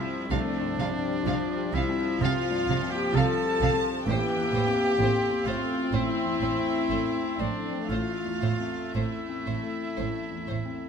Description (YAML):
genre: cinematic, emotional film score for orchestra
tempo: 57-65 BPM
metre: 4/4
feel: rubato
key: unclear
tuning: A4 = 444 Hz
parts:
  - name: clear cor anglais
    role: second line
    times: 0.0-10.9 s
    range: D4 to A4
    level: -35 LUFS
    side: right 4 dB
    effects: none
  - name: dark clarinet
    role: second line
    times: 0.0-10.9 s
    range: F3 to C4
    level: -37 LUFS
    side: right 1 dB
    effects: none
  - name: dark studio violin section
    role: second line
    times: 0.0-10.9 s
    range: D5 to A5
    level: -36 LUFS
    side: equal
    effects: none
  - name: felt-muted upright piano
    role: accompaniment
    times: 0.0-10.9 s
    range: A1 to A4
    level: -35 LUFS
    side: left 3 dB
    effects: none
  - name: warm studio viola section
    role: accompaniment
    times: 0.0-10.9 s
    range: E3 to C4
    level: -34 LUFS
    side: right 1 dB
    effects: none
  - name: dark French horn section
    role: sustained chords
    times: 0.0-10.9 s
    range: D4 to A4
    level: -30 LUFS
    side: left 5 dB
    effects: none
  - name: rich studio violin section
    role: melody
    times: 0.3-10.6 s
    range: C5 to F5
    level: -38 LUFS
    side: left 1 dB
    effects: none
  - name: dark studio double bass section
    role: bass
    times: 0.3-10.6 s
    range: A1 to C2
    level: -32 LUFS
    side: right 5 dB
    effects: none
  - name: warm studio cello section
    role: bass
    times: 0.3-10.6 s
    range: A2 to C3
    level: -32 LUFS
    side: right 4 dB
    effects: none
room: light reverb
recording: close, detailed microphones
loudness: -25 LUFS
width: side -7 dB against mid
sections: 0.0-10.9 A section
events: none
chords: 0.0 Csus4; 4.1 Am